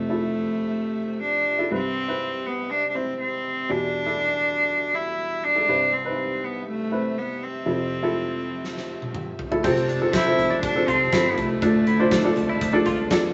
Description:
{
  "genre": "piano-driven pop",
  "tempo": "121 BPM",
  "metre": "4/4",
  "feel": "straight",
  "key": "unclear",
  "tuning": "A4 = 440 Hz",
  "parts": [
    { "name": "clear cello", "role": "melody", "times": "0.0-12.9 s", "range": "A3 to E4", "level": "-26 LUFS", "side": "equal", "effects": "none" },
    { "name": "warm upright piano", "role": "accompaniment", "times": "0.0-13.3 s", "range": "C2 to C5", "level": "-27 LUFS", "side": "equal", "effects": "none" },
    { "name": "warm studio string section", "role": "sustained chords", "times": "0.0-13.3 s", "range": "C3 to A5", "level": "-42 LUFS", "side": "equal", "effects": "none" },
    { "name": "huge arena drum kit", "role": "drums", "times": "8.6-13.2 s", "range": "crash cymbal, hi-hat, kick drum, snare drum, toms", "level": "-31 LUFS", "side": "equal", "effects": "none" },
    { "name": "twelve-string electric guitar", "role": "riff", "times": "9.6-13.0 s", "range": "C4 to F4", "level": "-32 LUFS", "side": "equal", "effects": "spring reverb" },
    { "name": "picked electric bass", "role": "bass", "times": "9.6-13.3 s", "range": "F1 to E2", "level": "-34 LUFS", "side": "equal", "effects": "none" }
  ],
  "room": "moderate studio reverb, RT60 0.5 s",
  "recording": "vinyl crackle, nothing above 8.0 kHz",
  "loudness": "-23 LUFS",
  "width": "mono",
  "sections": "0.0-9.6 A section; 9.6-13.3 B section",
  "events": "drum fill 8.6-9.6",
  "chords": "0.0 Fmaj7; 1.7 Cmaj7; 3.7 Em7; 5.7 Cmaj7; 7.7 Fmaj7; 9.6 F; 11.6 Dm"
}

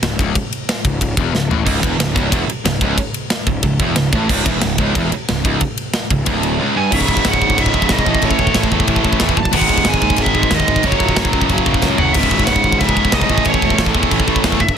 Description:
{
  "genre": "heavy metal",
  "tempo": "183 BPM",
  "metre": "4/4",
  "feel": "straight",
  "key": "C# minor",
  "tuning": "A4 = 440 Hz",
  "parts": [
    { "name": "distorted electric guitar", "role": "riff", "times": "0.0-14.6 s", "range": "C#2 to A3", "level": "-21 LUFS", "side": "left 12 dB", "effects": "overdrive" },
    { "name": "fuzz picked electric bass", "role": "bass", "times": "0.0-14.7 s", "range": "C#1 to E2", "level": "-21 LUFS", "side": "equal", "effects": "overdrive" },
    { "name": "tight metal drum kit", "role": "drums", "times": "0.0-14.8 s", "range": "china cymbal, crash cymbal, kick drum, ride cymbal, snare drum, toms", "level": "-18 LUFS", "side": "equal", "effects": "none" },
    { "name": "tight distorted guitar", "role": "riff", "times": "1.7-14.6 s", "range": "C#2 to A3", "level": "-20 LUFS", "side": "right 13 dB", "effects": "distortion" },
    { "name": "high-gain lead guitar", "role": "melody", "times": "6.8-14.8 s", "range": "C#5 to A5", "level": "-19 LUFS", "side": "right 3 dB", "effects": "distortion, digital delay" },
    { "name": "heavy high-gain guitar", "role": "riff", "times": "6.9-14.6 s", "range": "C#2 to A3", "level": "-23 LUFS", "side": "left 1 dB", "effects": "distortion" }
  ],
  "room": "little or no reverb",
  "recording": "dense, heavily limited modern master",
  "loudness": "-13 LUFS",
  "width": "side -8 dB against mid",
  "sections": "0.0-6.9 A section; 6.9-14.8 B section",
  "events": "drum fill 1.3-1.7, 11.8-12.2",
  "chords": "0.0 C#m; 8.1 A; 9.5 G#5; 10.9 F#5; 12.2 C#m; 13.3 A"
}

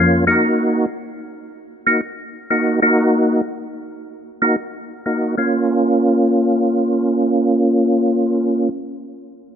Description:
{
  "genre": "dancehall",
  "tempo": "94 BPM",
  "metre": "4/4",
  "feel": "straight",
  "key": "Bb minor",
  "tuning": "A4 = 440 Hz",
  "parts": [
    { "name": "percussive tonewheel organ", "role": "accompaniment", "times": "0.0-8.7 s", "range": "Bb3 to Gb4", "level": "-16 LUFS", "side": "equal", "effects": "chorus vibrato, slow rotary speaker" }
  ],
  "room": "moderate plate reverb, RT60 3.6 s",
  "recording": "dark, warm production, low-pass filter",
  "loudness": "-15 LUFS",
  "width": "side -8 dB against mid",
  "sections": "0.0-5.4 A section; 5.4-7.9 B section",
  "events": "filter sweep 0.0-5.4",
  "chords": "0.3 Ebm; 5.4 Bbm"
}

